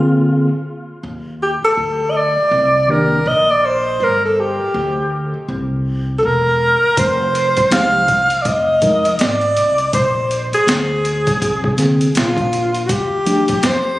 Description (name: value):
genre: hip hop, jazz-hop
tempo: 81 BPM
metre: 4/4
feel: swing 60% on 16ths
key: unclear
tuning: A4 = 443 Hz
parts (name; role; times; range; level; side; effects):
- breathy alto saxophone; melody; 0.0-14.0 s; F4 to F5; -15 LUFS; equal; tape echo
- mellow tine electric piano; accompaniment; 0.0-3.2, 7.7-13.5 s; D3 to Bb4; -17 LUFS; equal; medium stereo tremolo
- upright bass; bass; 1.0-14.0 s; E1 to F2; -23 LUFS; equal; none
- boom bap sampler-style drum kit; drums; 7.0-13.8 s; hi-hat, kick drum, snare drum; -20 LUFS; equal; overdrive
room: light reverb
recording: recorded on a phone in the room, studio reverb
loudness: -13 LUFS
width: side -17 dB against mid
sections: 0.0-14.0 A section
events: break 0.0-1.0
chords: 0.0 Bb9; 1.0 Ebmaj7(no3); 4.0 G5; 5.5 C7; 7.0 Fm7; 9.9 Bb9; 12.9 Ebmaj9#11